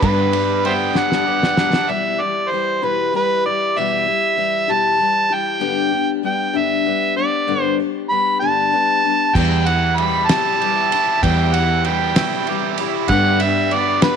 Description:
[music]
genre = folk rock and heartland rock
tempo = 64 BPM (dotted quarters)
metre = 6/8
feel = straight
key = E minor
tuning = A4 = 440 Hz
[part]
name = overdriven harmonica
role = melody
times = 0.0-14.2 s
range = B4 to B5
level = -18 LUFS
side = right 1 dB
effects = none
[part]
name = picked steel-string acoustic guitar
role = accompaniment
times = 0.0-14.2 s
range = E2 to G4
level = -22 LUFS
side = left 14 dB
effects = none
[part]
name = biting overdriven guitar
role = riff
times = 0.0-1.9, 9.4-14.2 s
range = E2 to G4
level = -24 LUFS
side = right 14 dB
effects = none
[part]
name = fingered electric bass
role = bass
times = 0.0-1.0, 9.3-14.0 s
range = E2 to G2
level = -20 LUFS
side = right 1 dB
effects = none
[part]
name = damped 70s drum kit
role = drums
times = 0.0-1.9, 9.4-14.2 s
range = crash cymbal, kick drum, ride cymbal, snare drum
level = -22 LUFS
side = right 1 dB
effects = none
[sound]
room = light reverb, small room ambience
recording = 1960s-style stereo with parts hard left and right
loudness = -15 LUFS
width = side -7 dB against mid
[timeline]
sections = 0.0-1.9 A section; 1.9-14.2 A section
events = drum fill 1.0-1.9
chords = 0.0 G; 1.9 Em; 5.6 G; 9.4 Em; 13.1 G

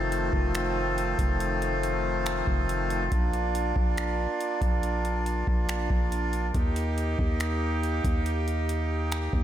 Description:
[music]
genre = hip hop, atmospheric cloud-rap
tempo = 140 BPM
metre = 4/4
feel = half-time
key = Eb lydian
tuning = A4 = 444 Hz
[part]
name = accordion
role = sustained chords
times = 0.0-9.4 s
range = Eb3 to G4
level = -28 LUFS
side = equal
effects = sidechain pumping
[part]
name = long sustained 808-style bass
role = bass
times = 0.0-9.4 s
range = F1 to Eb2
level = -29 LUFS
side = equal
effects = none
[part]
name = booming analog drum machine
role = drums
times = 0.1-9.4 s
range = finger snaps, hi-hat, kick drum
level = -29 LUFS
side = equal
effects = none
[sound]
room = moderate lush hall reverb, RT60 1.8 s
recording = dreamy mix soaked in reverb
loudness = -25 LUFS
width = side -11 dB against mid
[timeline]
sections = 0.0-9.4 A section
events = none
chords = 0.0 F7; 3.1 Bb; 6.5 Eb

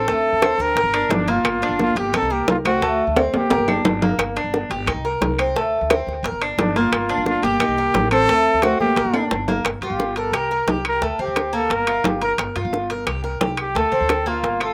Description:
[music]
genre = latin, Cuban son and guajira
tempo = 176 BPM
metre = 4/4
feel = straight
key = G minor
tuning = A4 = 444 Hz
[part]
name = breathy trumpet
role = melody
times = 0.0-3.8, 6.6-14.7 s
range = D4 to Bb4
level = -23 LUFS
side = equal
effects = slapback echo
[part]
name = nylon-string guitar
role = second line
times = 0.0-3.8, 6.6-9.3 s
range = F3 to D4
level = -28 LUFS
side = equal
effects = slapback echo
[part]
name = Cuban tres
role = arpeggios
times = 0.0-14.7 s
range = A3 to Bb4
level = -26 LUFS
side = equal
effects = slapback echo
[part]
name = upright bass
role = bass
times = 0.0-14.7 s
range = G1 to D3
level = -31 LUFS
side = equal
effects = none
[part]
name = bongos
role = percussion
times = 0.1-14.7 s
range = none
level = -27 LUFS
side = equal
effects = none
[part]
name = claves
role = percussion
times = 0.4-14.7 s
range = none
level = -32 LUFS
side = equal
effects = slapback echo
[part]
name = timbales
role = percussion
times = 0.4-14.7 s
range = none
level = -26 LUFS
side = equal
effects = none
[sound]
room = little or no reverb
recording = recorded outdoors, with no room sound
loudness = -20 LUFS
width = mono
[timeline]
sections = 0.0-9.7 A section; 9.7-14.7 B section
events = drum fill 3.2-4.2, 9.1-9.7; trumpet solo 9.7-14.7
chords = 0.1 D5; 0.8 Gm7; 2.1 Cm7; 2.8 D5; 3.5 Gm; 4.9 Cm7; 5.6 D5; 6.2 Gm7; 7.6 Cm7; 8.3 D5; 9.0 Gm; 9.7 Gm7; 10.3 C5; 11.0 D5; 11.7 Gm7; 13.1 C5; 13.8 D5

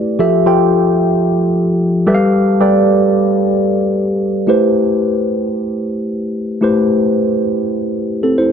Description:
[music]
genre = amapiano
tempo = 112 BPM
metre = 4/4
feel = swing 55% on 16ths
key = A minor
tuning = A4 = 439 Hz
[part]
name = tine electric piano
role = solo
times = 0.0-8.5 s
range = F3 to G5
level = -12 LUFS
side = equal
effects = phaser
[sound]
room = light reverb, digital ambience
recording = none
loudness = -12 LUFS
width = side -7 dB against mid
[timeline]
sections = 0.0-4.5 A section; 4.5-8.5 B section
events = drop 0.0-4.5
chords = 0.2 Fmaj7; 2.1 G7; 4.5 Am7

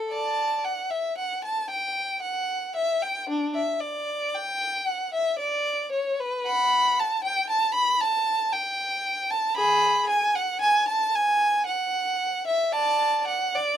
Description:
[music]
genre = classical, baroque-style suite movement for unaccompanied violin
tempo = 57 BPM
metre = 3/4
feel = rubato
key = D major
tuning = A4 = 440 Hz
[part]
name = rich violin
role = solo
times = 0.0-13.8 s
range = D4 to B5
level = -22 LUFS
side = equal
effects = none
[sound]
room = light reverb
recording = dark, warm production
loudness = -22 LUFS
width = side -10 dB against mid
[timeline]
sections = 0.0-13.8 A section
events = none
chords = none

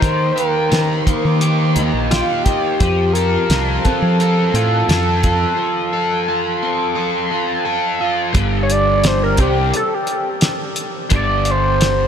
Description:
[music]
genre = psychedelic rock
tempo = 86 BPM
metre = 4/4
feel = straight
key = G minor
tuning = A4 = 441 Hz
[part]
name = sync lead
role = melody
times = 0.0-12.1 s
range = F4 to D5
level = -19 LUFS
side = equal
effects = chorus, ping-pong delay
[part]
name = overdriven electric guitar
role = riff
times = 0.0-12.1 s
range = G2 to A4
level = -20 LUFS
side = equal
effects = flanger
[part]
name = fuzz fingered electric bass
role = bass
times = 0.0-12.1 s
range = G1 to F3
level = -18 LUFS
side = equal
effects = overdrive
[part]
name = cloth-damped thuddy drum kit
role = drums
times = 0.0-12.0 s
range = hi-hat, kick drum, snare drum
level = -20 LUFS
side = equal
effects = none
[sound]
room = moderate huge ambient reverb, RT60 7.2 s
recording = dreamy mix soaked in reverb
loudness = -14 LUFS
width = side -8 dB against mid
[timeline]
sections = 0.0-8.4 A section; 8.4-12.1 B section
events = break 5.6-8.4; analog synth lead solo 8.4-12.1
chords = 0.0 Eb; 2.8 F; 8.4 G5

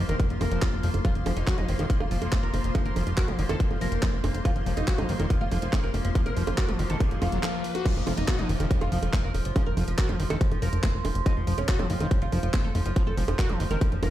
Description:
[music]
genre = psychedelic trance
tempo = 141 BPM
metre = 4/4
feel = straight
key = unclear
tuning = A4 = 439 Hz
[part]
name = oud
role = melody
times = 0.0-14.1 s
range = F3 to Bb4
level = -35 LUFS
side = right 1 dB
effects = phaser, sidechain pumping, tape echo
[part]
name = overtone-sweeping drone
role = sustained chords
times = 0.0-14.1 s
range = F3 to C5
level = -36 LUFS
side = equal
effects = chorus, built-in reverb, sidechain pumping
[part]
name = overdriven acid bass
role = riff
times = 0.0-14.1 s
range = Eb3 to Gb4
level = -33 LUFS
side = moving between left 6 dB and right 4 dB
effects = distortion, auto-pan, sidechain pumping, tape echo
[part]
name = plucky analog bass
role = bass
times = 0.0-14.1 s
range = F1 to Gb1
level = -27 LUFS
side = equal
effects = none
[part]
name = clear studio string section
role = texture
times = 0.0-7.9 s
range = F4 to C6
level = -40 LUFS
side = left 2 dB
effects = sidechain pumping
[part]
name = garage drum kit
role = drums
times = 0.1-14.1 s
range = bongos, crash cymbal, handclaps, hi-hat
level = -34 LUFS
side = right 4 dB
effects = none
[part]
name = electronic kick drum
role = drums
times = 0.2-13.9 s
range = none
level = -24 LUFS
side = equal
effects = none
[part]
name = riser and downlifter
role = sound effects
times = 5.9-11.3 s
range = none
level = -39 LUFS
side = equal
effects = none
[sound]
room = digital ambience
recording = played on a big sound system in a bare room, large studio reverb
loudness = -23 LUFS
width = side -13 dB against mid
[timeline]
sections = 0.0-7.9 A section; 7.9-14.1 B section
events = break 7.4-7.9; drop 7.9-14.1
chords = 0.0 F5

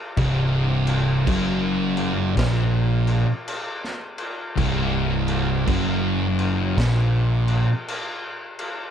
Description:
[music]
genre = stoner and doom metal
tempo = 54 BPM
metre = 4/4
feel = swing 64% on 8ths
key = unclear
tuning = A4 = 442 Hz
[part]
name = thick fuzz guitar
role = riff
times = 0.2-7.7 s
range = C2 to A#2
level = -23 LUFS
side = left 7 dB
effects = distortion
[part]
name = thick fuzz guitar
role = riff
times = 0.2-7.7 s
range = C2 to A#2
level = -23 LUFS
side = right 6 dB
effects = distortion
[part]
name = fuzz picked electric bass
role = bass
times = 0.2-7.6 s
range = C1 to A#1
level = -28 LUFS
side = equal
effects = overdrive
[part]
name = raw garage drum kit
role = drums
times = 0.2-8.8 s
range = crash cymbal, kick drum, snare drum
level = -28 LUFS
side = equal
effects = none
[sound]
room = little or no reverb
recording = dark, warm production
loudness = -20 LUFS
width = side -9 dB against mid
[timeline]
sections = 0.0-8.9 A section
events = none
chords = 0.0 F#

